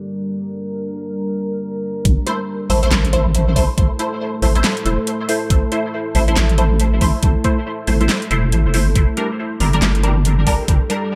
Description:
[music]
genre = deep dubstep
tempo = 139 BPM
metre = 4/4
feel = swing 61% on 16ths, half-time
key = A phrygian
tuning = A4 = 440 Hz
[part]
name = deep dark ambient pad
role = sustained chords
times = 0.0-11.2 s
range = G3 to Bb4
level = -27 LUFS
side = equal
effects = chorus, built-in reverb
[part]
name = deep soft wobble bass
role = bass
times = 2.1-10.8 s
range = E1 to A1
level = -18 LUFS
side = equal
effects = chorus
[part]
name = dubstep drum kit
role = drums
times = 2.1-11.0 s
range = handclaps, hi-hat, snare drum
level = -25 LUFS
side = equal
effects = none
[part]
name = electronic kick drum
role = drums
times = 2.1-10.8 s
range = none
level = -19 LUFS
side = equal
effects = none
[part]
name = filtered dub chord stab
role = stabs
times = 2.3-11.0 s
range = G3 to C5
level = -24 LUFS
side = equal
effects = phaser, ensemble chorus, dub echo
[sound]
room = light reverb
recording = echo-heavy mix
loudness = -18 LUFS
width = mono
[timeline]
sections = 0.0-2.0 A section; 2.0-11.2 B section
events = drop 2.0-11.2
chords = 0.0 Gm; 2.0 Am; 9.0 Gm

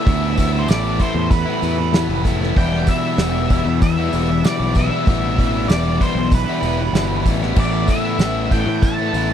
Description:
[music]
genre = classic rock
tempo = 96 BPM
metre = 4/4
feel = straight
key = unclear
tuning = A4 = 438 Hz
[part]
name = octave-fuzz lead guitar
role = melody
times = 0.0-9.3 s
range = B4 to A5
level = -25 LUFS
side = equal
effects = distortion
[part]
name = bright tonewheel organ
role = sustained chords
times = 0.0-9.3 s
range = A3 to B5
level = -35 LUFS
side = right 1 dB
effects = none
[part]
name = cranked stack guitar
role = riff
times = 0.0-9.3 s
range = E2 to E4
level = -26 LUFS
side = right 13 dB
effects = overdrive
[part]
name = fuzz guitar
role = riff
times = 0.0-9.3 s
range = E2 to A3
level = -25 LUFS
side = equal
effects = distortion
[part]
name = overdriven electric guitar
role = riff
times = 0.0-9.3 s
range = E2 to E4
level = -24 LUFS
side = left 12 dB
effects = none
[part]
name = growling fingered electric bass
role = bass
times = 0.1-9.3 s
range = E1 to A2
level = -21 LUFS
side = equal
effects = overdrive
[part]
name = damped 70s drum kit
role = drums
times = 0.1-9.3 s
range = crash cymbal, hi-hat, kick drum, snare drum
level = -18 LUFS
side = right 1 dB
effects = none
[part]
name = tambourine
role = percussion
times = 0.4-9.3 s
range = none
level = -38 LUFS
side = right 4 dB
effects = none
[sound]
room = studio reverb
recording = dry, close 1970s-style studio recording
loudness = -15 LUFS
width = side -9 dB against mid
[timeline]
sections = 0.0-9.3 A section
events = none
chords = 0.0 Asus2; 2.6 Em7; 7.6 Asus2

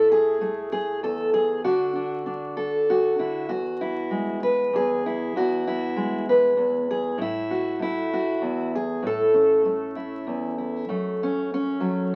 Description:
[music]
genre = folk, solo fingerstyle acoustic guitar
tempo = 98 BPM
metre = 3/4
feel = straight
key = A major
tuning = A4 = 438 Hz
[part]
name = fingerpicked steel-string acoustic guitar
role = solo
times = 0.0-12.2 s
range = E2 to B4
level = -24 LUFS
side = equal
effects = none
[sound]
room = wet small room reverb, RT60 0.5 s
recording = very old 78 rpm record, vinyl crackle, faint mains hum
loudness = -24 LUFS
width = mono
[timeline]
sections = 0.0-10.9 A section; 10.9-12.2 B section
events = none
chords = 0.0 A5; 1.6 N.C.; 3.5 E; 7.2 A5; 9.0 A; 10.9 F#m

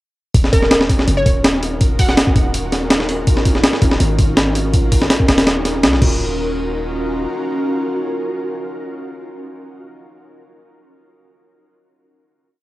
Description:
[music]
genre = drum and bass, jungle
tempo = 164 BPM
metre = 4/4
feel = straight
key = Eb minor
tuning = A4 = 439 Hz
[part]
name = ethereal airy pad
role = sustained chords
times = 1.0-9.0 s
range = Db4 to Bb4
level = -22 LUFS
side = equal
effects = ensemble chorus, built-in reverb, cassette tape
[part]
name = warm 808-style bass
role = bass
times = 0.3-7.3 s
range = Eb1 to Db2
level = -21 LUFS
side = equal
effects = none
[part]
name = breakbeat sampler-style drum kit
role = drums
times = 0.3-6.1 s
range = crash cymbal, hi-hat, kick drum, snare drum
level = -14 LUFS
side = equal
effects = cassette tape
[part]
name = glassy wavetable pluck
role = melody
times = 0.5-2.1 s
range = Bb4 to Gb5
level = -21 LUFS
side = equal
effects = chorus, cassette tape, dub echo
[sound]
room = moderate spring reverb, RT60 1.3 s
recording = home recording on cassette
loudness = -13 LUFS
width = side -17 dB against mid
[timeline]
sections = 0.3-6.2 drop; 6.2-9.1 final hit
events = drop 0.3-6.2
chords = 0.3 Ebm9

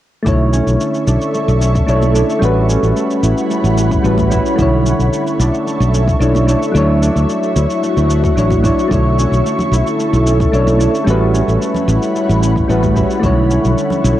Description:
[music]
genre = sunset chillout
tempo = 111 BPM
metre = 4/4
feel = straight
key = B minor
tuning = A4 = 441 Hz
[part]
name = soft electric-piano-like synth keys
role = accompaniment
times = 0.2-14.2 s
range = D3 to C#5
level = -18 LUFS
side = equal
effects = chorus, auto-pan, cassette tape, tape echo
[part]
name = ethereal airy pad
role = sustained chords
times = 0.7-14.2 s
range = G3 to C#6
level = -20 LUFS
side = equal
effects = ensemble chorus, built-in reverb, vintage 12-bit sampler grit, cassette tape
[part]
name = concert harp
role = arpeggios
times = 0.3-14.2 s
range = A3 to F#4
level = -20 LUFS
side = left 1 dB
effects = cassette tape, tape echo
[part]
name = modern bright fingered electric bass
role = bass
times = 0.3-14.1 s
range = A1 to D2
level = -14 LUFS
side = equal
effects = none
[part]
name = electronic kick drum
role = drums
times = 0.3-13.3 s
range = none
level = -19 LUFS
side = equal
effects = overdrive, cassette tape
[part]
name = shaker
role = drums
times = 0.3-14.2 s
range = none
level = -30 LUFS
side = equal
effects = overdrive, cassette tape
[part]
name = congas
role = percussion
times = 2.0-14.0 s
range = none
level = -25 LUFS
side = left 1 dB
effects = none
[sound]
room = light reverb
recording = home recording on cassette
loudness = -12 LUFS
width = side -13 dB against mid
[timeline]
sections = 0.3-14.2 A section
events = none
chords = 0.3 Bm11; 2.4 A13; 4.6 Bm11; 6.7 Dmaj9; 8.9 Bm11; 11.1 A13; 13.2 Bm11

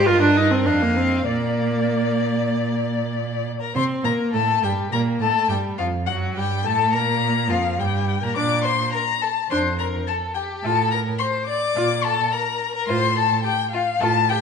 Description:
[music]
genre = quick classical-period movement for string quartet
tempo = 105 BPM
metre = 4/4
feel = rubato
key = Bb major, G minor from 3.7 s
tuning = A4 = 443 Hz
[part]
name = warm violin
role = melody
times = 0.0-14.4 s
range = D5 to D6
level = -23 LUFS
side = left 9 dB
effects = none
[part]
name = warm violin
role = second line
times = 0.0-14.4 s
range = F4 to F5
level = -27 LUFS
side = left 3 dB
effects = none
[part]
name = rich viola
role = accompaniment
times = 0.0-14.3 s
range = F3 to F4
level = -23 LUFS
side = right 1 dB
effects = none
[part]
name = rich cello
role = bass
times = 0.0-14.4 s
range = F2 to C3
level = -25 LUFS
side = right 5 dB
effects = none
[sound]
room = wet recital hall reverb, RT60 1.5 s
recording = nothing above 10.9 kHz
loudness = -19 LUFS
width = side -6 dB against mid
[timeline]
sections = 0.0-3.7 A section; 3.7-14.4 B section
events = none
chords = 0.1 Eb/G; 0.7 F5; 1.3 Bb; 3.7 Gm; 6.1 Gmmaj7/F#; 7.2 Gm; 8.4 Bb; 10.6 F/A; 11.8 Bb5; 12.9 F/A

